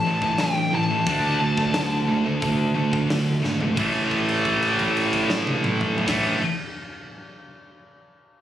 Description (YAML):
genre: heavy metal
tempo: 89 BPM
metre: 4/4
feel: straight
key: unclear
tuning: A4 = 440 Hz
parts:
  - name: high-gain lead guitar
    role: melody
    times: 0.0-3.1 s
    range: G5 to A5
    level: -26 LUFS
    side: left 2 dB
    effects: distortion, ping-pong delay
  - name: heavy high-gain guitar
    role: riff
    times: 0.0-6.4 s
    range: A2 to D4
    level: -27 LUFS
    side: left 9 dB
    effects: distortion
  - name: high-gain distorted guitar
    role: riff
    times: 0.0-6.4 s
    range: A2 to D4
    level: -24 LUFS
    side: right 5 dB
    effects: distortion
  - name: fuzz picked electric bass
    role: bass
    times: 0.0-6.4 s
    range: G#1 to D2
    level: -26 LUFS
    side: left 1 dB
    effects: overdrive
  - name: big rock drum kit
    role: drums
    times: 0.2-6.2 s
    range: crash cymbal, hi-hat, kick drum, snare drum, toms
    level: -29 LUFS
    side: left 1 dB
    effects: none
room: little or no reverb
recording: recorded on a phone in the room, studio ambience, compression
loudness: -20 LUFS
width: side -11 dB against mid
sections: 0.0-3.8 A section; 3.8-6.5 B section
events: drum fill 3.4-3.8; held note 3.8-6.1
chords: 0.0 A5; 1.1 D5; 3.8 A5